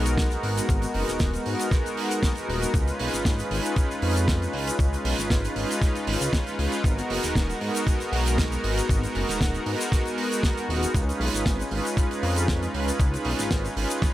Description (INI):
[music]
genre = nu-disco, nu disco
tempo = 117 BPM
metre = 4/4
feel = swing 53% on 16ths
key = G# dorian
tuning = A4 = 440 Hz
[part]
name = warm analog pad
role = accompaniment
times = 0.0-14.1 s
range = G#3 to B4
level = -27 LUFS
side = equal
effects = chorus, tremolo, sidechain pumping, slapback echo
[part]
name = chorused synth bass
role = bass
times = 0.0-13.9 s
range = D#1 to G#2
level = -28 LUFS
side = equal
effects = tube saturation
[part]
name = damped 70s drum kit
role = drums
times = 0.1-14.1 s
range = hi-hat, shaker, snare drum, toms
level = -31 LUFS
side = right 1 dB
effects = small room ambience
[part]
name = electronic kick drum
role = drums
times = 0.2-14.1 s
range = none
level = -23 LUFS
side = equal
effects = small room ambience
[sound]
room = small room ambience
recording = none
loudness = -22 LUFS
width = side -14 dB against mid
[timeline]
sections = 0.0-14.1 A section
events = none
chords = 0.0 G#m7; 2.7 C#7; 6.8 G#m7; 10.9 C#7